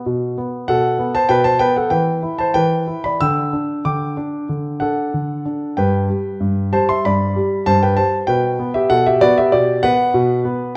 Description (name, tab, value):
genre	classical-period piano sonatina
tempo	96 BPM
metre	4/4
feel	rubato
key	G major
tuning	A4 = 439 Hz
part	warm concert grand piano	solo	0.0-10.7 s	G2 to E6	-18 LUFS	equal	none
room	moderate recital hall reverb, RT60 1.3 s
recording	dark, warm production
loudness	-18 LUFS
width	mono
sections	0.0-10.8 A section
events	none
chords	0.0 N.C.; 0.7 Am13/B; 1.9 E5; 3.2 G5/D; 4.5 D; 5.8 G; 8.3 G/B